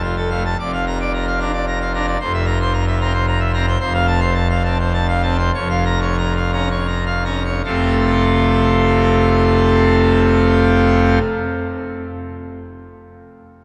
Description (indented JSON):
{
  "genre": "classical, organ toccata",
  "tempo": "75-113 BPM",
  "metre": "3/4",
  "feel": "straight",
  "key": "F major",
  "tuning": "A4 = 441 Hz",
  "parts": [
    { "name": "pipe organ, full organ", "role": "solo", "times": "0.0-11.2 s", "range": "F1 to Bb5", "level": "-17 LUFS", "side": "equal", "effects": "none" }
  ],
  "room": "wet cathedral reverb, RT60 5.3 s",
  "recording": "none",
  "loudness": "-17 LUFS",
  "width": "mono",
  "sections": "0.6-7.7 A section; 7.7-12.4 B section",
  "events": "slowing down 3.0-7.7",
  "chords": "0.0 F; 0.6 Bb/F; 2.2 C7/F; 3.8 F; 5.5 Bbm/F; 7.7 F"
}